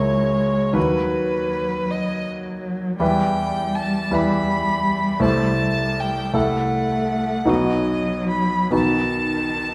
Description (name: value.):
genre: classical, slow romantic movement for piano trio.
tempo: 54 BPM (dotted quarters).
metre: 6/8.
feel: uneven beats, rubato.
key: unclear.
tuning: A4 = 440 Hz.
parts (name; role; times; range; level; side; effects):
rich violin; melody; 0.0-9.7 s; B4 to B5; -26 LUFS; equal; none.
warm cello; second line; 0.0-9.7 s; D#3 to A3; -28 LUFS; equal; none.
bright grand piano; accompaniment; 0.0-9.7 s; B1 to C5; -24 LUFS; equal; none.
room: wet recital hall reverb, RT60 1.5 s.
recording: heard from further back in the room.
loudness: -21 LUFS.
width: mono.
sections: 0.0-9.7 A section.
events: none.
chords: 0.0 F#7/C#; 0.8 B/D#; 3.0 Em; 5.2 Am/C; 7.5 B.